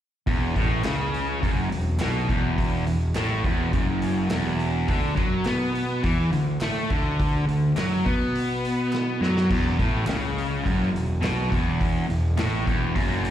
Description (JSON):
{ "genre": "garage rock duo or trio", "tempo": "104 BPM", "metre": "4/4", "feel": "straight", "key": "unclear", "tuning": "A4 = 439 Hz", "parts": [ { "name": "fuzz guitar", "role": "riff", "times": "0.3-13.3 s", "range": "E2 to B3", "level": "-24 LUFS", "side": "equal", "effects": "distortion, slapback echo" }, { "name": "fuzz picked electric bass", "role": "bass", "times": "0.3-13.3 s", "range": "E1 to B2", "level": "-28 LUFS", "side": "equal", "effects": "overdrive" }, { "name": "vintage drum kit", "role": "drums", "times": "0.3-13.3 s", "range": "crash cymbal, hi-hat, kick drum, snare drum", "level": "-28 LUFS", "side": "equal", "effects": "none" }, { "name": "group handclap", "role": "percussion", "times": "0.8-12.5 s", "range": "none", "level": "-42 LUFS", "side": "right 2 dB", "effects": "none" } ], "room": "small room ambience", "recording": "live gig heard through the venue's PA, recital hall reverb", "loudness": "-22 LUFS", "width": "side -11 dB against mid", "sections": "0.3-13.3 A section", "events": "drum fill 8.9-9.5", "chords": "0.3 E5; 4.9 D5; 9.5 E5", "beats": "| 0.27 0.85 1.42 2.00 | 2.58 3.15 3.73 4.31 | 4.89 5.46 6.04 6.62 | 7.20 7.77 8.35 8.93 | 9.50 10.08 10.66 11.23 | 11.81 12.38 12.96" }